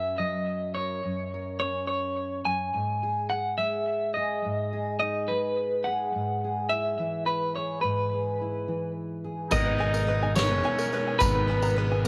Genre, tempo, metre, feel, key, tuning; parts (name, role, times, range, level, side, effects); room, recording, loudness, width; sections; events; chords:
indie folk with a building arrangement; 71 BPM (dotted quarters); 6/8; straight; A4 = 440 Hz
electric guitar through a small old amp; melody; 0.0-12.1 s; B4 to G#5; -30 LUFS; equal; tremolo, tape echo
fingerpicked steel-string acoustic guitar; accompaniment; 0.0-9.5 s; F#2 to A#4; -35 LUFS; equal
clear trumpet; second line; 9.5-12.1 s; B3 to D#4; -36 LUFS; equal
picked steel-string acoustic guitar; accompaniment; 9.5-12.1 s; G#2 to A#4; -38 LUFS; equal
warm upright piano; accompaniment; 9.5-12.1 s; G#1 to A#4; -41 LUFS; equal
mellow tonewheel organ; sustained chords; 9.5-12.1 s; B2 to D#4; -37 LUFS; equal; slow rotary speaker, chorus vibrato
open-back banjo; arpeggios; 9.5-12.1 s; A#4 to A#5; -36 LUFS; equal
fingered electric bass; bass; 9.5-12.1 s; G#1; -30 LUFS; equal
soft-mallet drum kit; drums; 9.5-11.9 s; crash cymbal, kick drum, ride cymbal, snare drum; -33 LUFS; equal
tambourine; percussion; 9.5-12.1 s; -42 LUFS; equal
light reverb, small room ambience; -28 LUFS; mono
0.0-9.5 A section; 9.5-12.1 B section
0.0 F#; 2.7 G#5; 6.1 E/G#; 9.5 G#madd9